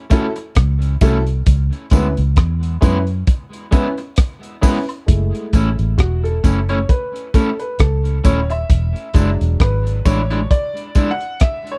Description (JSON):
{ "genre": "roots reggae", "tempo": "66 BPM", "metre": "4/4", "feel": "swing 57% on 16ths", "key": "F# minor", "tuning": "A4 = 439 Hz", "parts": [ { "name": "electric guitar at the edge of break-up", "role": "accompaniment", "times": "0.1-11.1 s", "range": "G#3 to E4", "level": "-25 LUFS", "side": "equal", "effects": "harmonic tremolo, tape echo" }, { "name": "warm upright piano", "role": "stabs", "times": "0.1-11.8 s", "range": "F#3 to F#5", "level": "-26 LUFS", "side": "equal", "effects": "none" }, { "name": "crunchy breakbeat drum kit", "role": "drums", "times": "0.1-11.8 s", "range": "hi-hat, kick drum, rim click", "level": "-15 LUFS", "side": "equal", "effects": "none" }, { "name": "tambourine and woodblock", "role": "percussion", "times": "0.1-11.2 s", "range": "none", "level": "-36 LUFS", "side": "equal", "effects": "none" }, { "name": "vintage muted fingered electric bass", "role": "bass", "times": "0.6-10.5 s", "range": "D#1 to F#2", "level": "-20 LUFS", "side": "equal", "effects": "none" } ], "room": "studio reverb", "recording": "dry, close 1970s-style studio recording", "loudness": "-17 LUFS", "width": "mono", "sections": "0.0-5.1 A section; 5.1-11.8 B section", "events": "upright piano solo 5.1-11.8", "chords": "0.0 F#m7; 1.5 C#m7; 5.1 F#m7; 8.7 E7" }